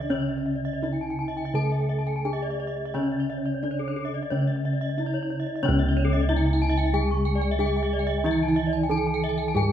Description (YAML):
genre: Balinese gamelan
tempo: 82-92 BPM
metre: 4/4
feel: straight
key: C# pelog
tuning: A4 = 440 Hz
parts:
  - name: gamelan-type bronze metallophone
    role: melody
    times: 0.0-9.7 s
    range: C#4 to A4-40c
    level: -29 LUFS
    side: equal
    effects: none
  - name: gamelan-type bronze metallophone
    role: accompaniment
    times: 0.0-9.7 s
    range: C#3 to A3-40c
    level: -32 LUFS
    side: right 3 dB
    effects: none
  - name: gamelan-type bronze metallophone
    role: arpeggios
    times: 0.0-9.7 s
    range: C#5 to A5-40c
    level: -34 LUFS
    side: right 5 dB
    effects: none
  - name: gamelan-type bossed gongs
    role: bass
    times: 0.0-9.7 s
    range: C#2 to E4-50c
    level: -26 LUFS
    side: equal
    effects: none
  - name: gamelan-type bronze metallophone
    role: arpeggios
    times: 0.1-9.6 s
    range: A4-40c to C#6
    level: -32 LUFS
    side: left 6 dB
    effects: none
room: moderate recital hall reverb, RT60 1.4 s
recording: none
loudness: -23 LUFS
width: side -10 dB against mid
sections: 0.0-5.6 A section; 5.6-9.7 B section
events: none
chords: none